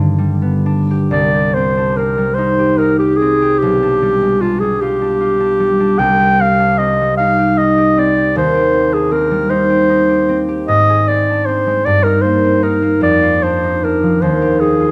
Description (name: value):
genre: classical, romantic duo for clarinet and harp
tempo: 41-53 BPM (dotted quarters)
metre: 6/8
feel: rubato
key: C minor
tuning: A4 = 440 Hz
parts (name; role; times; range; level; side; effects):
- concert harp; accompaniment; 0.0-14.9 s; B1 to Ab4; -17 LUFS; equal; none
- warm clarinet; melody; 1.1-14.9 s; F4 to G5; -16 LUFS; equal; none
room: moderate recital hall reverb, RT60 1.3 s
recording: close, detailed microphones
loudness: -14 LUFS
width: mono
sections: 0.0-1.1 A section; 1.1-14.9 B section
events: none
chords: 0.0 G; 1.1 Cm; 3.6 G7/B; 6.0 Cm; 8.4 Cm/Eb; 10.7 Ab; 11.9 Eb/G; 13.0 Cm11/F; 14.2 Eb69